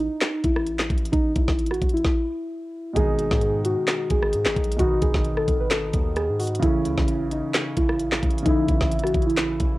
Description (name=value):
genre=hip hop, trap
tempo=131 BPM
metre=4/4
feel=half-time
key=G# phrygian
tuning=A4 = 440 Hz
part: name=muted felt-like synth keys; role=melody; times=0.0-9.8 s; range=D#4 to B4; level=-25 LUFS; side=equal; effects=chorus, cassette tape
part: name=long sustained 808-style bass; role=bass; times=0.0-9.8 s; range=G#1 to G#2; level=-30 LUFS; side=equal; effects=none
part: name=trap drum kit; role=drums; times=0.2-9.7 s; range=handclaps, hi-hat, kick drum, rim click, snare drum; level=-23 LUFS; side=equal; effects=cassette tape
part: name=dark baby grand piano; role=accompaniment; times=2.9-9.8 s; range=B2 to E4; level=-28 LUFS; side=right 1 dB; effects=cassette tape
room=little or no reverb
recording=home recording on cassette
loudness=-20 LUFS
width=side -18 dB against mid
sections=0.0-3.0 A section; 3.0-9.8 B section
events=stop 2.0-3.0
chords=0.0 A5; 3.0 G#m; 6.6 A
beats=0.21 0.67 | 1.13 1.59 2.04 2.50 | 2.96 3.42 3.88 4.33 | 4.79 5.25 5.71 6.17 | 6.62 7.08 7.54 8.00 | 8.46 8.91 9.37